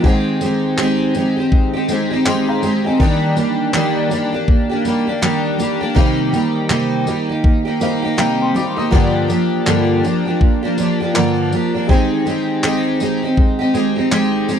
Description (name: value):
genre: acoustic pop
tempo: 81 BPM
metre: 4/4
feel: swing 60% on 16ths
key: unclear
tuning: A4 = 440 Hz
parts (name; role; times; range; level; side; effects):
- dark upright piano; accompaniment; 0.0-14.6 s; Eb4 to Eb6; -26 LUFS; left 4 dB; none
- fingerpicked twelve-string acoustic guitar; accompaniment; 0.0-14.6 s; G2 to G4; -16 LUFS; equal; double-tracked left and right
- nylon-string guitar; arpeggios; 0.0-14.6 s; Eb3 to G4; -23 LUFS; right 7 dB; none
- pop drum kit; drums; 0.0-14.6 s; handclaps, kick drum, tambourine; -16 LUFS; left 1 dB; none
room: light reverb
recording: dry, close 1970s-style studio recording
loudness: -14 LUFS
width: side -8 dB against mid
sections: 0.0-14.6 A section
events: none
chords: 0.0 Abmaj7; 3.0 Ebmaj7; 6.0 Cm7; 8.9 Gm7; 11.9 Abmaj7